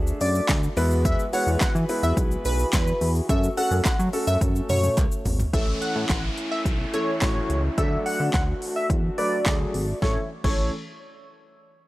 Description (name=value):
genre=dance-pop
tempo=107 BPM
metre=4/4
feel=straight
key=A major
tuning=A4 = 440 Hz
part: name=warm baby grand piano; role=accompaniment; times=0.0-10.7 s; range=E3 to C#5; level=-29 LUFS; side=equal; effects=low-pass filter
part: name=mellow brass ensemble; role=sustained chords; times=0.0-10.3 s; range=A2 to E5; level=-32 LUFS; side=equal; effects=sidechain pumping, low-pass filter
part: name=chorused synth bass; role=bass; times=0.0-10.7 s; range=G#1 to F#3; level=-25 LUFS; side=equal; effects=sidechain pumping
part: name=deep house drum kit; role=drums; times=0.1-10.6 s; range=crash cymbal, handclaps, hi-hat, kick drum, shaker, snare drum, toms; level=-25 LUFS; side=equal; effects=overdrive
part: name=plucky unison lead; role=melody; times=0.2-10.7 s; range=B4 to F#5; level=-28 LUFS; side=equal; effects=sidechain pumping, low-pass filter
part: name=group handclap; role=percussion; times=0.5-5.1 s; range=none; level=-36 LUFS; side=equal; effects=none
part: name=downlifter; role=sound effects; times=5.5-10.0 s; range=none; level=-36 LUFS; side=equal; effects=none
room=little or no reverb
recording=dry, gritty hardware recording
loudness=-21 LUFS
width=side -17 dB against mid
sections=0.0-5.5 A section; 5.5-10.0 B section; 10.0-11.9 C section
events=drop 0.0-5.5; drum fill 4.4-5.5; filter sweep 5.5-10.0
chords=0.0 D; 0.8 Eadd9; 3.3 F#m; 5.5 A; 7.8 D; 10.0 A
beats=0.49 | 1.05 1.61 2.17 2.73 | 3.29 3.85 4.41 4.97 | 5.54 6.10 6.66 7.22 | 7.78 8.34 8.90 9.46 | 10.02 10.58